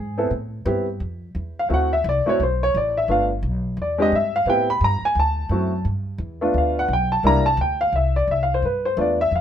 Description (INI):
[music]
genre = jazz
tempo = 173 BPM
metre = 4/4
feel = swing 62% on 8ths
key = G mixolydian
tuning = A4 = 440 Hz
[part]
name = warm grand piano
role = melody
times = 0.0-9.4 s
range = G3 to B5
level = -19 LUFS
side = equal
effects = none
[part]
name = upright bass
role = bass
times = 0.0-9.4 s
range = G1 to A2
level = -24 LUFS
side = equal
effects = none
[sound]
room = light reverb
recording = minimal, uncompressed stereo recording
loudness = -19 LUFS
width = side -9 dB against mid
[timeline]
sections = 0.0-5.9 A section; 5.9-9.4 A section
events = grand piano solo 0.0-9.4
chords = 0.3 A7(no3); 1.7 D9; 3.1 G9; 3.8 Em7; 4.5 Am7; 5.2 D9; 5.9 G9; 7.2 C9; 8.6 G9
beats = | 0.32 0.66 1.01 1.35 | 1.70 2.05 2.39 2.74 | 3.09 3.43 3.78 4.12 | 4.47 4.82 5.16 5.51 | 5.86 6.20 6.55 6.89 | 7.24 7.59 7.93 8.28 | 8.62 8.97 9.32